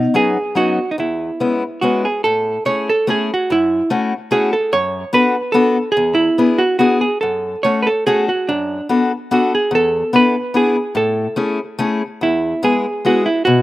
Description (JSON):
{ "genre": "musette waltz", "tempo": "144 BPM", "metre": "3/4", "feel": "rubato", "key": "A major", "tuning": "A4 = 440 Hz", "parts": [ { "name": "hollow-body jazz guitar", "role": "melody", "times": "0.0-13.6 s", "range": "D4 to C#5", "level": "-16 LUFS", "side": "right 2 dB", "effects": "none" }, { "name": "picked acoustic archtop guitar", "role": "accompaniment", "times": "0.0-13.6 s", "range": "E2 to A4", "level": "-18 LUFS", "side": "left 3 dB", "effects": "none" } ], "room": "little or no reverb", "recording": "recorded outdoors, with no room sound", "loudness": "-14 LUFS", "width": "side -16 dB against mid", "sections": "0.0-2.2 A section; 2.2-12.2 B section; 12.2-13.6 A section", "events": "none", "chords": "0.0 Badd9; 1.0 E6; 2.2 Amaj7; 3.5 F#m7; 4.7 Bm7/F#; 6.0 E7; 7.2 F#m; 8.5 Bm7/F#; 9.7 E7sus4; 10.5 E7; 10.9 Amaj7; 12.2 E", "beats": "0.15 0.57 | 0.98 1.40 1.83 | 2.25 2.67 3.09 | 3.50 3.91 4.32 | 4.73 5.14 5.55 | 5.96 6.38 6.81 | 7.23 7.66 8.07 | 8.49 8.90 9.31 | 9.72 10.13 10.54 | 10.95 11.37 11.79 | 12.21 12.63 13.05 | 13.47" }